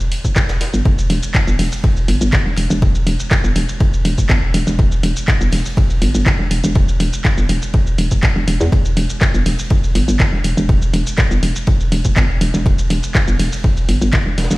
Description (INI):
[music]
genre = minimal techno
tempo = 122 BPM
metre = 4/4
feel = straight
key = E minor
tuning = A4 = 440 Hz
[part]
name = punchy analog drum machine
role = drums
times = 0.0-14.6 s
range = handclaps, hi-hat, shaker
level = -23 LUFS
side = equal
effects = none
[part]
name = electronic kick drum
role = drums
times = 0.2-14.2 s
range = none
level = -15 LUFS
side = equal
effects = none
[part]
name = vintage drum kit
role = drums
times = 0.4-14.6 s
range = hi-hat, ride cymbal, snare drum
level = -30 LUFS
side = left 1 dB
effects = high-pass filter on cymbals, high-pass filter on hats, high-pass filter on snare, high-pass filter on room
[part]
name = hollow knocking FM bass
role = bass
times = 0.7-14.6 s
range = E1 to E2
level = -16 LUFS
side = equal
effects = sidechain pumping
[sound]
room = small room reverb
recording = played on a big sound system in a bare room, stone room reverb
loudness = -13 LUFS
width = side -20 dB against mid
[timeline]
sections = 0.9-14.6 A section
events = drop 0.9-14.6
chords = none